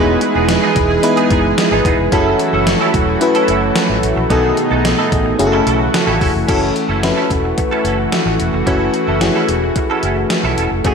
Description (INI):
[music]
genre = 1980s-style pop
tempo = 110 BPM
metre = 4/4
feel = straight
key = F# dorian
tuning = A4 = 440 Hz
[part]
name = FM electric piano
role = accompaniment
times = 0.0-10.9 s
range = A3 to B4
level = -18 LUFS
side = left 3 dB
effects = chorus
[part]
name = lush unison pad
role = sustained chords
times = 0.0-10.9 s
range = B2 to G#4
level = -19 LUFS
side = right 1 dB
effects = chorus
[part]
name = direct-recorded clean electric guitar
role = riff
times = 0.0-10.9 s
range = A3 to A4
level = -21 LUFS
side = right 4 dB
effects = ensemble chorus, ping-pong delay
[part]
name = analog synth brass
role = stabs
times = 0.0-6.5 s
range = C#3 to B4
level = -21 LUFS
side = right 2 dB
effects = chorus, ping-pong delay
[part]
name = vintage muted fingered electric bass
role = bass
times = 0.0-10.9 s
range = E1 to B1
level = -21 LUFS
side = equal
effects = none
[part]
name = gated 80s digital drum machine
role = drums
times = 0.2-10.9 s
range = crash cymbal, hi-hat, kick drum, snare drum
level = -19 LUFS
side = right 1 dB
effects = gated reverb, gated reverb snare, overdrive
[sound]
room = wet lush hall reverb, RT60 2.2 s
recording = dreamy mix soaked in reverb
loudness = -12 LUFS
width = side -6 dB against mid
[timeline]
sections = 0.0-6.5 A section; 6.5-10.8 B section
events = none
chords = 0.0 Emaj7; 2.1 F#m7; 4.3 B7; 5.4 F#m7